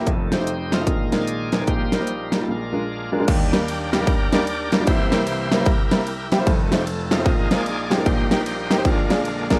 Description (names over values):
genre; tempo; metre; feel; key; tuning
uptempo gospel; 150 BPM; 4/4; swing 63% on 8ths; Eb major; A4 = 440 Hz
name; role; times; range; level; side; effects
warm upright piano; accompaniment; 0.0-9.6 s; F1 to D5; -25 LUFS; equal; none
bright tonewheel organ; sustained chords; 0.0-9.6 s; F2 to D5; -29 LUFS; equal; fast rotary speaker, overdrive
dubstep drum kit; drums; 0.1-9.6 s; crash cymbal, hi-hat, kick drum, ride cymbal, snare drum; -24 LUFS; equal; none
room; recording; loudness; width
light reverb; dark, warm production; -21 LUFS; mono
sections
0.0-3.3 A section; 3.3-9.6 B section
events
tonewheel organ solo 0.0-3.3, 3.3-9.6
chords
0.1 F7; 0.9 Bb9sus4; 1.7 Eb/Bb; 2.5 Bb7; 3.3 Ebmaj7; 4.9 C7; 6.5 F7; 7.3 Bb9sus4; 8.1 Eb/Bb; 8.9 Bb7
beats
| 0.07 0.47 0.87 1.27 | 1.68 2.08 2.48 2.88 | 3.28 3.68 4.08 4.48 | 4.88 5.27 5.67 6.07 | 6.47 6.87 7.26 7.66 | 8.06 8.46 8.86 9.26